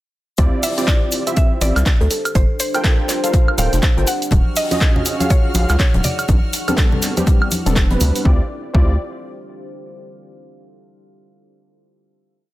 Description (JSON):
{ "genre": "deep house", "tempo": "122 BPM", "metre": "4/4", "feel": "swing 60% on 16ths", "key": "D minor", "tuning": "A4 = 440 Hz", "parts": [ { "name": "warm analog keys", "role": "stabs", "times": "0.4-8.9 s", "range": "G3 to G5", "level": "-22 LUFS", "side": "equal", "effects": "chorus, sidechain pumping, tape echo" }, { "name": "rubbery square bass", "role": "bass", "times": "0.4-9.0 s", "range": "D1 to D2", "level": "-17 LUFS", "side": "equal", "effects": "sidechain pumping" }, { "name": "compact cocktail drum kit", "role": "drums", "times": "0.4-8.2 s", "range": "hi-hat, snare drum", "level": "-31 LUFS", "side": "left 3 dB", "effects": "sidechain pumping on hats, high-pass filter on hats, high-pass filter on snare, high-pass filter on room" }, { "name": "electronic kick drum", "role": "drums", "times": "0.4-8.9 s", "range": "none", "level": "-15 LUFS", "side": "equal", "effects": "none" }, { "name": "punchy analog drum machine", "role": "drums", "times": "0.4-8.2 s", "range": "handclaps, hi-hat, woodblock", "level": "-23 LUFS", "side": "right 2 dB", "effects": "none" }, { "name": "egg shaker", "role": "percussion", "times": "0.4-8.2 s", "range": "none", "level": "-28 LUFS", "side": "left 2 dB", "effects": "none" }, { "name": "deep dark ambient pad", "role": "texture", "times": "2.1-10.2 s", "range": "D4 to C5", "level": "-31 LUFS", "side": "right 2 dB", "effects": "chorus, built-in reverb, sidechain pumping" }, { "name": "mallet-like synth pluck", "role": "melody", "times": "0.6-7.5 s", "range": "C5 to Gb5", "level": "-26 LUFS", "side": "left 1 dB", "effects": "chorus" }, { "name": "kalimba", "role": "melody", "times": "2.0-4.0 s", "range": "A4 to C5", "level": "-27 LUFS", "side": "left 2 dB", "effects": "vintage 12-bit sampler grit, tape echo" }, { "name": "congas", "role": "percussion", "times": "4.3-8.1 s", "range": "none", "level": "-25 LUFS", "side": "left 1 dB", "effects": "none" }, { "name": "bright studio violin section", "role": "texture", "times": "4.3-8.3 s", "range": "Gb4 to F6", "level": "-32 LUFS", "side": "equal", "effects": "sidechain pumping" } ], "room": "studio ambience", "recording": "dense, heavily limited modern master", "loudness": "-14 LUFS", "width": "side -16 dB against mid", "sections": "0.4-8.3 drop; 8.3-10.2 final chord", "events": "drop 0.4-8.3", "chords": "0.4 Dm11; 2.4 Gm11; 4.1 Ebm11; 6.3 Am11; 8.3 Dm11" }